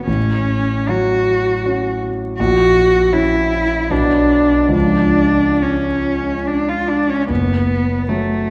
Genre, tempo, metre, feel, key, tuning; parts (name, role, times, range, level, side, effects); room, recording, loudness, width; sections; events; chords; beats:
classical, romantic duo for cello and grand piano; 68-82 BPM; 3/4; rubato; F# minor; A4 = 439 Hz
rich cello; melody; 0.0-8.5 s; A3 to F#4; -18 LUFS; equal
warm concert grand piano; accompaniment; 0.0-8.5 s; F#1 to F#4; -20 LUFS; equal
wet scoring stage reverb, RT60 1.6 s; heard from further back in the room, vinyl crackle; -16 LUFS; mono
0.0-8.5 A section
0.1 F#m/A; 2.4 F#7/A#; 3.9 Bm; 4.7 C#; 7.3 F#m
| 0.07 0.89 1.65 | 2.38 3.13 3.91 | 4.74 5.61 6.48 | 7.29 8.10